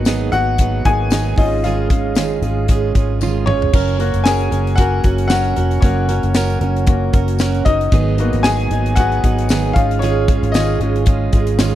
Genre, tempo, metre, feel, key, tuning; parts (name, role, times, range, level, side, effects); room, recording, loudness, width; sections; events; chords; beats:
piano-driven pop; 115 BPM; 4/4; swing 56% on 16ths; F# major; A4 = 440 Hz
clear upright piano; accompaniment; 0.0-11.8 s; A#3 to G#5; -20 LUFS; left 3 dB
fingerpicked plugged-in steel-string acoustic guitar; riff; 0.0-11.8 s; G#2 to A#4; -21 LUFS; right 8 dB
vintage muted fingered electric bass; bass; 0.0-11.8 s; E#1 to G#1; -19 LUFS; equal
modern studio drum kit; drums; 0.1-11.7 s; crash cymbal, hi-hat, kick drum, snare drum, toms; -16 LUFS; equal
tambourine; percussion; 0.1-11.7 s; -34 LUFS; left 17 dB
small room ambience; dry, close 1970s-style studio recording; -14 LUFS; side -13 dB against mid
0.0-3.7 A section; 3.7-11.8 B section
upright piano solo 0.0-3.7, 3.7-11.8; drum fill 3.2-3.7
0.0 G#m7; 1.4 C#add9/G#; 3.7 F#; 7.9 G#m7; 9.8 C#add9/G#
0.06 0.59 1.11 | 1.64 2.16 2.69 3.21 | 3.74 4.26 4.78 5.31 | 5.83 6.35 6.88 7.40 | 7.92 8.45 8.97 9.49 | 10.02 10.54 11.07 11.59